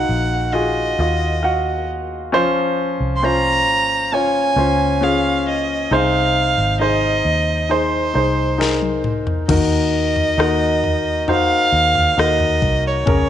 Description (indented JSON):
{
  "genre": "pop ballad",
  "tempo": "67 BPM",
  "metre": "4/4",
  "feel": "straight",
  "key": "unclear",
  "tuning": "A4 = 440 Hz",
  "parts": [
    { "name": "warm violin", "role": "melody", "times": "0.0-13.3 s", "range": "C5 to C6", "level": "-19 LUFS", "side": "right 2 dB", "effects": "none" },
    { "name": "clear baby grand piano", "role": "accompaniment", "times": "0.0-13.3 s", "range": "C3 to Gb5", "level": "-19 LUFS", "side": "left 2 dB", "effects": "none" },
    { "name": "vintage muted fingered electric bass", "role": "bass", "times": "0.0-13.3 s", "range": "Ab1 to Eb2", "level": "-22 LUFS", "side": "equal", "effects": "none" },
    { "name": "smooth R&B drum kit", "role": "drums", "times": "8.6-13.3 s", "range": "crash cymbal, kick drum, rim click, snare drum, toms", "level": "-22 LUFS", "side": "left 2 dB", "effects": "none" }
  ],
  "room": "light reverb, digital ambience",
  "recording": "1960s-style stereo, nothing above 10.7 kHz",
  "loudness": "-15 LUFS",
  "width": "side -10 dB against mid",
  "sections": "0.0-9.5 A section; 9.5-13.3 B section",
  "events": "drum fill 8.6-9.5",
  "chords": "0.0 Ebmadd9; 2.3 Dbmaj7; 5.9 Ab; 9.5 Ebm"
}